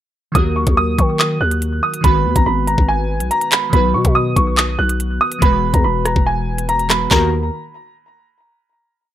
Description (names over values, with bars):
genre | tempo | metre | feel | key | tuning
hip hop, drill | 142 BPM | 4/4 | half-time | Eb phrygian | A4 = 440 Hz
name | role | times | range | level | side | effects
warm baby grand piano | melody | 0.3-7.3 s | Ab5 to Gb6 | -18 LUFS | right 3 dB | digital delay
glassy digital keys | accompaniment | 0.3-7.3 s | Eb3 to Cb5 | -22 LUFS | left 1 dB | chorus
growling 808-style bass | bass | 0.3-7.5 s | E1 to Eb3 | -19 LUFS | left 1 dB | none
drill drum kit | drums | 0.3-7.2 s | handclaps, hi-hat, kick drum, rim click, snare drum | -16 LUFS | equal | none
room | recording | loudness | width
little or no reverb | none | -14 LUFS | side -12 dB against mid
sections
0.3-7.1 hook; 7.1-8.8 final chord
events
none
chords
0.3 Ebm; 2.0 Abm7; 3.7 B; 5.4 Eadd9; 7.1 Ebm